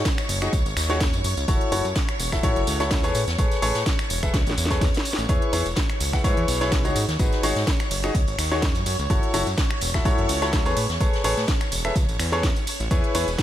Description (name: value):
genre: piano house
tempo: 126 BPM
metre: 4/4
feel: swing 54% on 16ths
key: unclear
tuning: A4 = 444 Hz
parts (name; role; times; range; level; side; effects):
- string machine, violins; sustained chords; 0.0-13.4 s; B4 to C#6; -32 LUFS; equal; ensemble chorus, sidechain pumping
- fat analog bass; bass; 0.0-13.4 s; E1 to A2; -27 LUFS; equal; sidechain pumping
- electronic kick drum; drums; 0.1-13.4 s; none; -24 LUFS; equal; none
- garage drum kit; drums; 0.1-13.4 s; finger snaps, hi-hat, ride cymbal, snare drum, tambourine; -28 LUFS; right 1 dB; none
- vintage brush drum kit; drums; 0.1-13.4 s; hi-hat, snare drum; -36 LUFS; left 2 dB; none
- clear grand piano; riff; 0.4-13.3 s; D#4 to F#5; -26 LUFS; left 1 dB; sidechain pumping, ping-pong delay
room: small room ambience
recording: none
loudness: -20 LUFS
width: side -12 dB against mid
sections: 0.0-13.4 A section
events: drum fill 4.3-5.3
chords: 0.0 G#7sus4; 1.2 F#m7; 3.1 Amaj9; 5.3 E6; 7.0 G#7sus4; 8.9 F#m7; 10.8 Amaj9; 12.9 E6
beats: 0.05 0.53 1.00 | 1.48 1.96 2.43 2.91 | 3.39 3.86 4.34 4.81 | 5.29 5.77 6.24 6.72 | 7.20 7.67 8.15 8.62 | 9.10 9.58 10.05 10.53 | 11.01 11.48 11.96 12.43 | 12.91 13.39